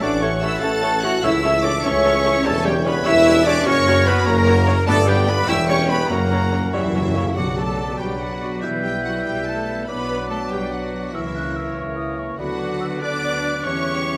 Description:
classical; 96 BPM (dotted quarters); 6/8; straight; B minor; A4 = 440 Hz
warm symphonic violin section; melody; 0.0-14.2 s; E5 to A6; -30 LUFS; equal
clear clarinet; second line; 0.0-14.2 s; G4 to G5; -30 LUFS; equal
concert flute; second line; 0.0-14.0 s; G4 to G6; -30 LUFS; equal
mellow cor anglais; second line; 0.0-14.2 s; B4 to E5; -34 LUFS; equal
warm symphonic violin section; second line; 0.0-14.2 s; A#3 to A5; -36 LUFS; equal
mellow bassoon; accompaniment; 0.0-14.2 s; D3 to A#3; -33 LUFS; equal
rich symphonic viola section; accompaniment; 0.0-14.2 s; F#3 to D5; -32 LUFS; equal
dark French horn section; sustained chords; 0.0-14.2 s; G3 to A4; -29 LUFS; equal
dark trombone section; sustained chords; 0.0-14.2 s; B2 to C#4; -34 LUFS; equal
concert harp; arpeggios; 0.0-14.2 s; E2 to C#5; -34 LUFS; equal
clear trumpet section; stabs; 0.0-6.7 s; G4 to A5; -26 LUFS; equal
mellow tuba; bass; 0.0-7.3 s; E1 to C#2; -28 LUFS; equal
rich symphonic cello section; bass; 0.0-14.2 s; E3 to A4; -31 LUFS; equal
rich symphonic double bass section; bass; 0.0-14.2 s; A1 to G2; -28 LUFS; equal
timpani; percussion; 6.1-8.0 s; F#2 to B2; -31 LUFS; equal
moderate scoring stage reverb, RT60 1.8 s; -20 LUFS; mono
0.0-7.4 A section; 7.4-14.2 B section
timpani fill 6.1-7.4
0.0 A; 1.2 A/C#; 2.5 C#m7b5/E; 3.7 F#; 4.9 G; 5.5 C#dim/E; 6.1 F#; 7.4 Bm; 8.6 Em/B; 9.9 Bm; 11.1 A#dim/C#; 12.4 Bm/D; 13.6 C#dim/E
| 0.03 0.63 | 1.24 1.85 | 2.46 3.06 | 3.66 4.27 | 4.87 5.48 | 6.11 6.73 | 7.37 8.00 | 8.63 9.26 | 9.88 10.51 | 11.14 11.76 | 12.39 13.03 | 13.65

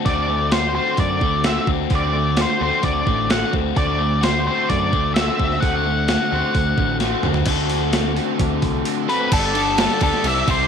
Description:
indie rock; 130 BPM; 4/4; straight; A4 = 438 Hz
overdriven electric guitar; riff; 0.0-10.7 s; G2 to A4; -23 LUFS; left 13 dB
overdriven semi-hollow guitar; riff; 0.0-10.7 s; G2 to A4; -26 LUFS; right 15 dB; analog chorus
octave-fuzz lead guitar; melody; 0.1-10.7 s; A4 to F#5; -22 LUFS; left 1 dB; distortion, tape echo
growling picked electric bass; bass; 0.1-10.7 s; G1 to F#2; -25 LUFS; right 1 dB; overdrive
gated 80s digital drum machine; drums; 0.1-10.6 s; crash cymbal, hi-hat, kick drum, snare drum, toms; -22 LUFS; right 1 dB; gated reverb, gated reverb snare
digital ambience; 1960s-style stereo with parts hard left and right; -17 LUFS; side -7 dB against mid
0.0-7.5 A section; 7.5-9.3 B section; 9.3-10.7 C section
drum fill 7.0-7.5; kick and snare drop out 8.9-9.3
0.0 D7; 9.3 Gadd9
| 0.06 0.53 0.99 1.45 | 1.92 2.38 2.84 3.31 | 3.77 4.23 4.70 5.16 | 5.62 6.09 6.55 7.01 | 7.48 7.94 8.40 8.87 | 9.33 9.79 10.25

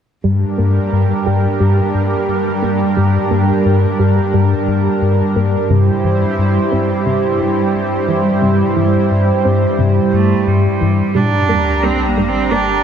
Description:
cinematic, hybrid orchestral and electronic film score; 88 BPM; 4/4; straight; G minor; A4 = 440 Hz
chorused pulse-width pad; sustained chords; 0.2-12.8 s; G3 to Bb5; -17 LUFS; right 1 dB
soft round pluck; arpeggios; 0.2-12.7 s; C3 to G4; -24 LUFS; right 2 dB; chorus, ping-pong delay
smooth synth bass; riff; 0.2-11.0 s; G2; -16 LUFS; left 3 dB
rich symphonic cello section; bass; 0.2-12.6 s; G2; -19 LUFS; right 5 dB
rich cello; melody; 10.1-12.8 s; G3 to D4; -17 LUFS; right 5 dB
sub drop; sound effects; 11.2-12.8 s; -20 LUFS; equal
moderate scoring stage reverb, RT60 1.4 s; dark, warm production; -12 LUFS; side -8 dB against mid
0.2-11.2 A section; 11.2-12.8 B section
impact 11.2-12.8
0.2 Gm; 5.7 C/G; 11.2 Gm
| 0.24 0.93 1.61 2.29 | 2.97 3.65 4.34 5.02 | 5.70 6.38 7.06 7.75 | 8.43 9.11 9.79 10.47 | 11.15 11.84 12.52

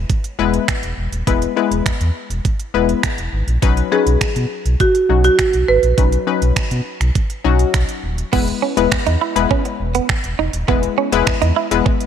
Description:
dance-pop; 102 BPM; 4/4; straight; A4 = 441 Hz
analog pluck; accompaniment; 0.0-12.1 s; F#3 to B4; -20 LUFS; left 12 dB; chorus, sidechain pumping
sub bass with octave; bass; 0.0-11.8 s; D#1 to B2; -18 LUFS; equal; sidechain pumping
pop drum kit; drums; 0.1-12.1 s; crash cymbal, finger snaps, hi-hat, kick drum; -20 LUFS; right 2 dB
marimba with hard mallets; melody; 3.9-7.7 s; F#4 to B4; -16 LUFS; right 3 dB; tape echo
direct-recorded clean electric guitar; riff; 8.3-11.9 s; B3 to E4; -21 LUFS; right 12 dB; analog chorus
light reverb; 1960s-style stereo with parts hard left and right; -15 LUFS; side -8 dB against mid
0.0-8.3 A section; 8.3-12.1 B section
0.0 E; 3.6 Badd9; 8.3 E
0.10 0.68 | 1.27 1.86 2.45 3.04 | 3.62 4.21 4.80 5.39 | 5.98 6.57 7.15 7.74 | 8.33 8.92 9.51 10.10 | 10.68 11.27 11.86

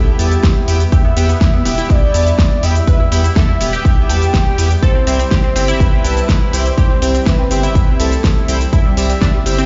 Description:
progressive house; 123 BPM; 4/4; straight; C major; A4 = 440 Hz
soft octave-layered synth lead; melody; 0.0-9.6 s; G4 to G5; -24 LUFS; equal; chorus, digital delay
warm analog pad; sustained chords; 0.0-9.7 s; G3 to E4; -28 LUFS; equal; chorus, sidechain pumping
tight sequenced synth; arpeggios; 0.0-9.7 s; G3 to B4; -26 LUFS; equal; chorus, phaser, sidechain pumping, dub echo
chorused polysynth; stabs; 0.0-9.7 s; B3 to A5; -26 LUFS; equal; cassette tape, sidechain pumping, dub echo
round analog bass; bass; 0.0-9.6 s; E1 to E2; -19 LUFS; equal; sidechain pumping
pop drum kit; drums; 0.2-9.7 s; hi-hat, shaker, snare drum; -24 LUFS; equal
electronic kick drum; drums; 0.4-9.3 s; -15 LUFS; equal
little or no reverb; played on a big sound system in a bare room, stone room reverb, nothing above 7.5 kHz; -13 LUFS; mono
0.0-9.7 A section
0.0 Em; 4.8 C
0.43 | 0.92 1.41 1.90 2.39 | 2.87 3.36 3.85 4.34 | 4.83 5.31 5.80 6.29 | 6.78 7.26 7.75 8.24 | 8.73 9.22

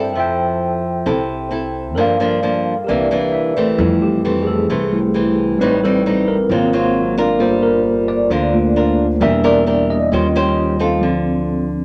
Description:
bossa nova; 132 BPM; 4/4; straight; F major; A4 = 440 Hz
nylon-string guitar; accompaniment; 0.0-11.8 s; F2 to C5; -21 LUFS; equal
tine electric piano; accompaniment; 0.0-11.8 s; F3 to G5; -19 LUFS; equal
upright bass; bass; 0.0-11.8 s; E1 to G2; -27 LUFS; equal
moderate studio reverb, RT60 0.5 s; -17 LUFS; mono
0.0-3.8 A section; 3.8-11.8 B section
tine electric piano fill 3.1-3.8; tine electric piano solo 3.8-11.8
0.2 Fmaj7; 2.0 Gm7; 2.9 C9; 3.8 Fmaj7; 5.6 Am7b5; 6.5 Ab13; 7.4 Gm7; 9.2 Em7b5; 10.1 Eb13; 11.0 Dm7
| 0.16 0.61 1.07 1.52 | 1.97 2.43 2.88 3.33 | 3.78 4.24 4.69 5.14 | 5.59 6.05 6.50 6.95 | 7.41 7.86 8.31 8.76 | 9.22 9.67 10.12 10.57 | 11.03 11.48

